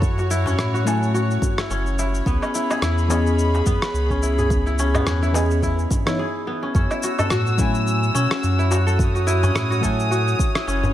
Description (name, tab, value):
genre	organic downtempo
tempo	107 BPM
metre	4/4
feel	swing 57% on 16ths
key	unclear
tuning	A4 = 439 Hz
part	deep mellow chord stab	accompaniment	0.0-10.9 s	E3 to G#5	-26 LUFS	left 1 dB	chorus, sidechain pumping, tape echo
part	rich chamber string section	sustained chords	0.0-10.9 s	F#4 to E6	-27 LUFS	equal	sidechain pumping
part	kora	arpeggios	0.0-10.9 s	B3 to A4	-25 LUFS	left 1 dB	tape echo
part	warm sub bass	bass	0.0-10.9 s	F#1 to B2	-21 LUFS	equal	none
part	electronic kick drum	drums	0.0-10.5 s	none	-22 LUFS	equal	none
part	electronic shaker, rim click and woodblock	drums	0.0-10.9 s	none	-28 LUFS	equal	overdrive
part	darbuka	percussion	0.2-10.9 s	none	-30 LUFS	left 1 dB	none
room	light reverb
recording	none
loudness	-18 LUFS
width	side -12 dB against mid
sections	0.0-6.8 A section; 6.8-10.9 B section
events	break 6.2-6.8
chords	0.0 F#m7; 2.3 C#m7; 6.8 F#m7